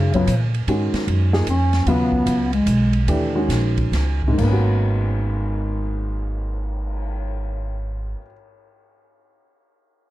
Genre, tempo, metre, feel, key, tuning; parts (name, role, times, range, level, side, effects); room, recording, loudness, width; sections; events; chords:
modal jazz; 129-152 BPM; 3/4; swing 65% on 8ths; G# dorian; A4 = 438 Hz
dark bass clarinet; second line; 0.0-3.0 s; C#3 to C#4; -20 LUFS; left 1 dB; plate reverb
warm baby grand piano; accompaniment; 0.0-8.3 s; G#2 to G#4; -24 LUFS; equal
upright bass; bass; 0.0-8.1 s; G#1 to A#2; -21 LUFS; right 1 dB
open jazz drum kit; drums; 0.1-7.1 s; crash cymbal, cymbal swell, hi-hat, kick drum, ride cymbal, snare drum; -30 LUFS; right 1 dB
light reverb; dark, warm production; -18 LUFS; side -16 dB against mid
0.0-4.4 A section; 4.4-7.2 B section
bass clarinet solo 0.0-4.4; slowing down 1.9-4.4
0.0 G#m11